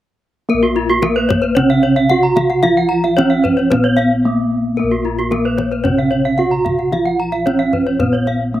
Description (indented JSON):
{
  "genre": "Balinese gamelan",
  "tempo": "112 BPM",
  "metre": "4/4",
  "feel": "straight",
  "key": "Bb pelog",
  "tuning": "A4 = 439 Hz",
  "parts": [
    { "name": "gamelan-type bronze metallophone", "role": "melody", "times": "0.5-8.6 s", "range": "Bb3 to Gb4-20c", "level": "-16 LUFS", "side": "right 1 dB", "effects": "none" },
    { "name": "gamelan-type bronze metallophone", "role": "accompaniment", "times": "0.5-8.6 s", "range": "Db3-30c to Cb4+20c", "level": "-23 LUFS", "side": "left 2 dB", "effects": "none" },
    { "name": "gamelan-type bronze metallophone", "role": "arpeggios", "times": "0.5-8.4 s", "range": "F4-30c to Bb5", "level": "-20 LUFS", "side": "left 5 dB", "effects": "slapback echo" },
    { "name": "gamelan-type bossed gongs", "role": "bass", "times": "0.5-8.6 s", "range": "Bb1 to Bb4", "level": "-25 LUFS", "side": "equal", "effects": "none" },
    { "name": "gamelan-type bronze metallophone", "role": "arpeggios", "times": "0.6-8.3 s", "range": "Gb4-20c to Bb5", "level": "-20 LUFS", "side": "right 4 dB", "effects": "slapback echo" },
    { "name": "kendang", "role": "percussion", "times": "0.9-8.3 s", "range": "none", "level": "-23 LUFS", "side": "left 2 dB", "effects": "none" }
  ],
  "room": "little or no reverb",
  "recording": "recorded outdoors, with no room sound",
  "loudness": "-13 LUFS",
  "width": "side -13 dB against mid",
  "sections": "0.5-8.6 A section",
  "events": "break 4.0-4.8, 8.3-8.6",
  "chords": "none"
}